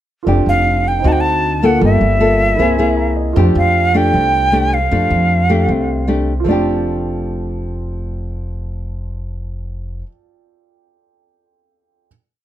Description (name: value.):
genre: bossa nova.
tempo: 155 BPM.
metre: 4/4.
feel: straight.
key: F major.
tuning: A4 = 440 Hz.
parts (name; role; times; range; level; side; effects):
warm grand piano; accompaniment; 0.2-12.1 s; Eb4 to Bb5; -23 LUFS; right 8 dB; none.
nylon-string guitar; accompaniment; 0.3-10.1 s; C3 to A4; -18 LUFS; left 2 dB; none.
upright bass; bass; 0.3-10.0 s; F1 to F2; -18 LUFS; equal; none.
jazz flute; melody; 0.5-6.1 s; E5 to A5; -16 LUFS; right 1 dB; none.
room: light reverb.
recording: none.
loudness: -13 LUFS.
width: side -12 dB against mid.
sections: 0.3-6.5 A section; 6.5-9.6 final chord.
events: grand piano fill 2.8-3.4.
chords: 0.3 F69; 1.0 D7b9; 1.8 Gm9; 2.6 Caug7; 3.4 F69.